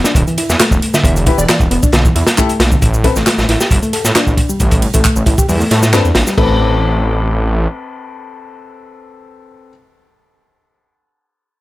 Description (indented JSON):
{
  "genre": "breakbeat, breaks",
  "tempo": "135 BPM",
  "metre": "4/4",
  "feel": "straight",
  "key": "A minor",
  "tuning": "A4 = 440 Hz",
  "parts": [
    { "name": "reed electric piano", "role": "riff", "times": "0.0-6.6 s", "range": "D3 to A4", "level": "-19 LUFS", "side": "equal", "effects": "overdrive, vintage 12-bit sampler grit, ping-pong delay" },
    { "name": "crunchy breakbeat drum kit", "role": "drums", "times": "0.0-6.5 s", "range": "crash cymbal, hi-hat, kick drum, snare drum", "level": "-14 LUFS", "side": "equal", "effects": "none" },
    { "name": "garage drum kit", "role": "drums", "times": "0.1-6.4 s", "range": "handclaps, ride cymbal, shaker", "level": "-20 LUFS", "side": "right 1 dB", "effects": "none" },
    { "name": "detuned saw bass", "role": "bass", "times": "0.2-7.7 s", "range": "D1 to A2", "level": "-15 LUFS", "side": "equal", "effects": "none" },
    { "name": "plucky unison lead", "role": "melody", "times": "0.9-1.6 s", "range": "D5 to E5", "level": "-24 LUFS", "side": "equal", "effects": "AM radio sound, ping-pong delay" },
    { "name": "warm grand piano", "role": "stabs", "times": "1.3-3.1, 5.9-9.7 s", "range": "C4 to B4", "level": "-21 LUFS", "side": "left 6 dB", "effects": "ping-pong delay" }
  ],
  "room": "little or no reverb",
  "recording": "none",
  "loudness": "-10 LUFS",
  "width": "side -17 dB against mid",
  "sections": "0.0-6.4 A section; 6.4-9.9 B section",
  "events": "drop 0.0-6.4",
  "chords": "0.0 E5; 2.8 A5; 6.4 Amadd9"
}